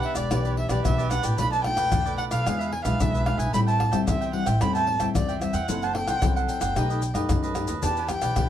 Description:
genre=samba and choro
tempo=112 BPM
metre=4/4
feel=straight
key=E minor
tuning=A4 = 438 Hz
part: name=dark erhu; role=melody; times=0.0-8.5 s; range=D5 to B5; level=-27 LUFS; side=right 1 dB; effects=none
part: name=cavaquinho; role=accompaniment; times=0.0-8.5 s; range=D4 to G5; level=-33 LUFS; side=right 6 dB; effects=none
part: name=nylon-string guitar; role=accompaniment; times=0.0-8.5 s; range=F#2 to A4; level=-30 LUFS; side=left 3 dB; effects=none
part: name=pandeiro, maracas, surdo and tamborim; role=percussion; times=0.0-8.5 s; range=none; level=-28 LUFS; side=left 1 dB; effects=none
part: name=upright bass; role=bass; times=0.2-8.5 s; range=E1 to F#2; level=-28 LUFS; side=equal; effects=none
room=wet studio ambience, RT60 0.5 s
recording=band playing live in one room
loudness=-22 LUFS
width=side -10 dB against mid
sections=0.0-8.5 A section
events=none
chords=0.0 Em7; 1.4 Bm7b5; 2.5 E7b9; 3.5 Am7; 5.7 F#m7b5; 6.8 B7b13; 7.8 Em7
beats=0.32 0.85 | 1.39 1.93 2.46 3.00 | 3.54 4.07 4.61 5.15 | 5.68 6.22 6.76 7.29 | 7.83 8.37

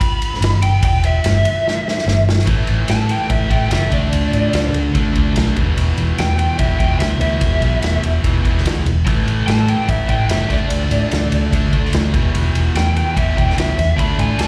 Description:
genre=blues rock power trio and southern rock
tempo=146 BPM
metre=4/4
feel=straight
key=unclear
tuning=A4 = 435 Hz
part: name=lead guitar through a small cranked amp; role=melody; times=0.0-14.5 s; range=D5 to B5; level=-24 LUFS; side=equal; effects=overdrive, slapback echo
part: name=vintage drum kit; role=drums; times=0.0-14.5 s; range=kick drum, ride cymbal, snare drum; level=-22 LUFS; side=equal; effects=none
part: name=vintage muted fingered electric bass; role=bass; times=0.4-14.5 s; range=E1 to A2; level=-19 LUFS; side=equal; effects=none
part: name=cranked stack guitar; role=riff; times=2.5-14.5 s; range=E2 to D4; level=-24 LUFS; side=equal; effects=overdrive, slapback echo
room=little or no reverb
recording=live gig heard through the venue's PA, recital hall reverb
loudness=-17 LUFS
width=mono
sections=0.0-2.5 A section; 2.5-14.5 B section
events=lead electric guitar solo 0.0-2.5; drum fill 1.6-2.5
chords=0.4 G; 0.8 Em; 2.1 Em/G; 2.5 A5; 3.9 D5; 5.6 E5; 9.1 A5; 10.5 D5; 12.1 E5; 14.0 D5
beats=0.00 0.41 | 0.82 1.23 1.65 2.06 | 2.47 2.88 3.29 3.71 | 4.12 4.53 4.95 5.36 | 5.77 6.18 6.60 7.01 | 7.42 7.83 8.24 8.65 | 9.06 9.47 9.88 10.29 | 10.70 11.11 11.52 11.93 | 12.34 12.75 13.16 13.57 | 13.98 14.38

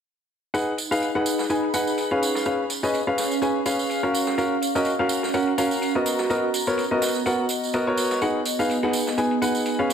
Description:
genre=piano house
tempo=125 BPM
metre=4/4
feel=swing 56% on 16ths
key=G# dorian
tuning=A4 = 442 Hz
part: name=warm upright piano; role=riff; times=0.5-9.9 s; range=B3 to G#5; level=-23 LUFS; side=left 1 dB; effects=ping-pong delay
part: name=dusty soul sampler-style drum kit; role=drums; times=0.5-9.9 s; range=hi-hat, snare drum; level=-38 LUFS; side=equal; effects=high-pass filter on hats, low-pass filter on hats, high-pass filter on snare, low-pass filter on snare
part: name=tambourine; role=percussion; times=0.5-9.9 s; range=none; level=-31 LUFS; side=right 4 dB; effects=none
part: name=warbly tape-like pad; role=texture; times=0.8-9.9 s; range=B3 to B5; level=-27 LUFS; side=right 2 dB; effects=chorus, built-in reverb
room=moderate lush hall reverb, RT60 2.0 s, studio reverb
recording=none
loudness=-21 LUFS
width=side -8 dB against mid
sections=0.5-9.9 A section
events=none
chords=0.5 G#m7; 2.2 C#7; 4.1 F#maj7; 6.1 Bmaj7; 8.2 G#m7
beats=| 0.54 1.02 1.50 1.98 | 2.46 2.94 3.42 3.90 | 4.38 4.86 5.34 5.82 | 6.30 6.78 7.26 7.74 | 8.22 8.70 9.18 9.66

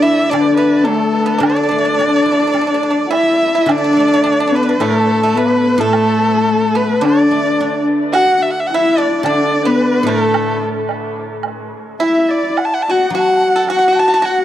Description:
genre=chinese traditional, Chinese chamber ensemble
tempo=108 BPM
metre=4/4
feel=rubato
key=D gong mode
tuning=A4 = 440 Hz
part: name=clear erhu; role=melody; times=0.0-14.4 s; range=A4 to A5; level=-16 LUFS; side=right 1 dB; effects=dub echo
part: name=bright reedy large dizi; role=second line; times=0.0-14.4 s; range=A4 to A5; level=-23 LUFS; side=left 2 dB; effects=dub echo
part: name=dark horsehead fiddle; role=second line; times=0.0-14.4 s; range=A3 to F#4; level=-16 LUFS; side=left 3 dB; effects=none
part: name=pipa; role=second line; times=0.0-14.4 s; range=A3 to A4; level=-23 LUFS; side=right 4 dB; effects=dub echo
part: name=guzheng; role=accompaniment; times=0.0-14.4 s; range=A2 to A4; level=-19 LUFS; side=equal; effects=dub echo
part: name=woodblock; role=percussion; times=0.3-13.8 s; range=none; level=-25 LUFS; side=right 8 dB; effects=none
room=wet spring reverb, RT60 1.3 s, studio reverb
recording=echo-heavy mix, cassette tape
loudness=-12 LUFS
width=side -12 dB against mid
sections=0.0-3.7 A section; 3.7-14.4 B section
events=none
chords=none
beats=0.32 0.87 | 1.42 1.98 2.54 3.11 | 3.68 4.24 4.80 5.36 | 5.92 6.48 7.04 7.59 | 8.14 8.70 9.24 9.79 | 10.34 10.89 11.45 12.01 | 12.59 13.15 13.70 14.26

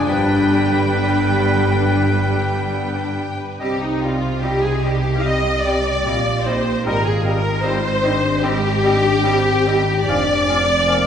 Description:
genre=classical, slow romantic movement for symphony orchestra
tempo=67-77 BPM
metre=4/4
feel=rubato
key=C minor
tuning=A4 = 440 Hz
part: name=rich studio violin section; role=melody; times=0.0-11.1 s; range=Eb4 to G5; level=-24 LUFS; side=left 3 dB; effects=none
part: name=bright clarinet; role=second line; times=0.0-11.0 s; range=C4 to D4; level=-29 LUFS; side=left 2 dB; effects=none
part: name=clear oboe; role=second line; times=0.0-11.0 s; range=B4 to F5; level=-30 LUFS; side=right 1 dB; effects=none
part: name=clear studio violin section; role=second line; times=0.0-11.1 s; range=B3 to Eb5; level=-28 LUFS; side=left 2 dB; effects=none
part: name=mellow hollow silver concert flute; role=second line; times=0.0-11.0 s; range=G5 to Ab5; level=-32 LUFS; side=left 1 dB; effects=none
part: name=clear bassoon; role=accompaniment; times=0.0-11.0 s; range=F3 to G3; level=-29 LUFS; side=right 1 dB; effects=none
part: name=warm studio viola section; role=accompaniment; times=0.0-11.1 s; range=D4 to F5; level=-22 LUFS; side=equal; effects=none
part: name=mellow French horn section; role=sustained chords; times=0.0-11.1 s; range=Bb3 to G4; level=-26 LUFS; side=left 3 dB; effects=none
part: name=mellow trumpet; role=stabs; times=0.0-3.3 s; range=Ab4 to B4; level=-27 LUFS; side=right 3 dB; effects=none
part: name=rich studio cello section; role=bass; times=0.0-11.1 s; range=F2 to C3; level=-23 LUFS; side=right 2 dB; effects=none
part: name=rich studio double bass section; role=bass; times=0.0-11.1 s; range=F1 to C2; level=-25 LUFS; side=right 1 dB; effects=none
part: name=mellow trombone section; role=sustained chords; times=0.1-3.3 s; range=D3 to G3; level=-28 LUFS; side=left 1 dB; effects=none
room=wet scoring stage reverb, RT60 2.1 s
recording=heard from further back in the room, nothing above 10.5 kHz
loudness=-16 LUFS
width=side -8 dB against mid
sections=0.0-3.6 A section; 3.6-11.1 B section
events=none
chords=0.1 G; 3.6 Cm; 6.9 Abmaj7; 10.1 Fm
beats=| 0.09 0.97 1.86 2.73 | 3.60 4.42 5.24 6.05 | 6.85 7.63 8.43 9.23 | 10.07 10.87

